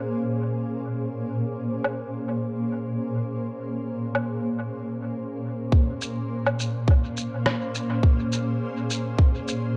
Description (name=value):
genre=ambient dub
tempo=104 BPM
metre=4/4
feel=swing 55% on 16ths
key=Bb minor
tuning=A4 = 440 Hz
part: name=granular cloud pad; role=sustained chords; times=0.0-9.8 s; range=Bb2 to C5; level=-29 LUFS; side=equal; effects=built-in reverb
part: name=electronic woodblock, shaker and rim click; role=drums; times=1.8-9.6 s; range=none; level=-30 LUFS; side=equal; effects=studio ambience, dub echo
part: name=electronic kick drum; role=drums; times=5.7-9.3 s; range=none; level=-20 LUFS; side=equal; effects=studio ambience
room=moderate spring reverb, RT60 2.4 s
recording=dark, warm production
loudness=-26 LUFS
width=mono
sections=0.0-5.7 A section; 5.7-9.8 B section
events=none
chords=0.0 Bbm9